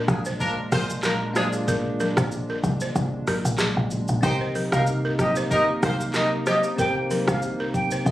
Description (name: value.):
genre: afrobeats.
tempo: 94 BPM.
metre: 4/4.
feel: swing 55% on 16ths.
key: C minor.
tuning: A4 = 440 Hz.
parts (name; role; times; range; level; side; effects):
bell-like tine electric piano; accompaniment; 0.0-8.1 s; Bb3 to Eb5; -31 LUFS; left 1 dB; fast stereo tremolo.
hollow soft pad; sustained chords; 0.0-8.1 s; Bb2 to Eb4; -30 LUFS; equal; chorus, sidechain pumping.
balafon; riff; 0.0-8.0 s; Ab4 to C5; -31 LUFS; right 1 dB; slapback echo.
warm horn section; second line; 0.1-6.6 s; C4 to C5; -28 LUFS; left 1 dB; slapback echo.
woody log drum bass; bass; 0.1-8.1 s; Bb1 to C2; -27 LUFS; equal; none.
afro-pop drum kit; drums; 0.1-8.1 s; handclaps, hi-hat, kick drum, rim click, shaker; -28 LUFS; equal; none.
congas; percussion; 0.1-8.1 s; none; -32 LUFS; equal; none.
mellow jazz flute; melody; 4.2-7.9 s; Eb5 to G5; -25 LUFS; right 1 dB; slapback echo.
room: light reverb.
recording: recorded on a phone in the room, studio reverb, compression.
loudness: -21 LUFS.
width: side -14 dB against mid.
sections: 0.0-8.1 A section.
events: none.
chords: 0.0 Bb7; 4.2 Cm7.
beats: 0.40 1.04 | 1.68 2.32 2.96 3.59 | 4.23 4.87 5.51 6.15 | 6.79 7.42 8.06.